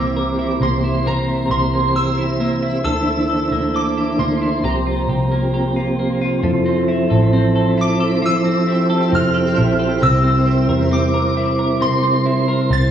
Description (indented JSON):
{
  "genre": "dream pop",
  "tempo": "67 BPM",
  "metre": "4/4",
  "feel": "straight",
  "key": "F major",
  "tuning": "A4 = 442 Hz",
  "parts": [
    { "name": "shimmering bell with halo", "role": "melody", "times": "0.0-12.9 s", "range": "Bb5 to A6", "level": "-22 LUFS", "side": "equal", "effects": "ensemble chorus, phaser, tape echo" },
    { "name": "mellow tonewheel organ", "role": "sustained chords", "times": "0.0-12.9 s", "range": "E3 to C5", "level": "-19 LUFS", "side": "right 3 dB", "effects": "chorus vibrato, fast rotary speaker" },
    { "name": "twelve-string electric guitar", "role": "arpeggios", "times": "0.0-12.9 s", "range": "C3 to Bb4", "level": "-21 LUFS", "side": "left 2 dB", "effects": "analog chorus, tape echo" },
    { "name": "vintage muted picked electric bass", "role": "bass", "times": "0.0-12.9 s", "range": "F1 to E2", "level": "-22 LUFS", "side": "equal", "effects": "none" },
    { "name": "twinkling granular texture", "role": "texture", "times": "2.5-10.7 s", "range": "E4 to C5", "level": "-30 LUFS", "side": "right 2 dB", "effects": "built-in reverb, tape echo" }
  ],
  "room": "wet recital hall reverb, RT60 1.4 s",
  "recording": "worn, warbling old tape, cassette tape, warbly pitch drift, studio reverb",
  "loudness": "-15 LUFS",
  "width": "side -9 dB against mid",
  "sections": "0.0-6.4 A section; 6.4-12.9 B section",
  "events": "none",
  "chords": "0.0 C7; 2.9 Bbmaj9#11/D; 4.6 C7sus4; 6.4 Fmaj7; 10.0 C7"
}